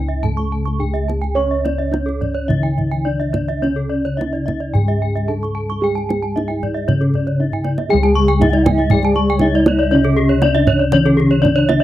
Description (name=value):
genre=Balinese gamelan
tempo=106-119 BPM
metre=4/4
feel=straight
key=C# pelog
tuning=A4 = 440 Hz
part: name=gamelan-type bronze metallophone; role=melody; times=0.0-11.8 s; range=C#4 to C#5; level=-21 LUFS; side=equal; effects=none
part: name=gamelan-type bronze metallophone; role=accompaniment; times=0.0-11.8 s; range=C#3 to C#4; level=-22 LUFS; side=left 2 dB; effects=none
part: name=gamelan-type bronze metallophone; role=arpeggios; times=0.0-11.8 s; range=G#4-45c to C#6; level=-24 LUFS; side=left 8 dB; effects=none
part: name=gamelan-type bossed gongs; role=bass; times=0.0-11.8 s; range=C#2 to C#5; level=-19 LUFS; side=equal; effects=none
part: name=gamelan-type bronze metallophone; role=arpeggios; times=0.1-11.8 s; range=A4-40c to C#6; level=-24 LUFS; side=right 7 dB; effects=none
part: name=kendang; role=percussion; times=0.2-11.8 s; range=none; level=-20 LUFS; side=right 2 dB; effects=none
part: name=breathy mellow bansuri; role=second line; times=8.4-10.8 s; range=C#5 to G#5-42c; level=-27 LUFS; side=right 9 dB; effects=none
room=light reverb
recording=dry, close 1970s-style studio recording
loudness=-14 LUFS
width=side -13 dB against mid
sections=0.0-7.9 A section; 7.9-11.8 B section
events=drum fill 7.5-7.9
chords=none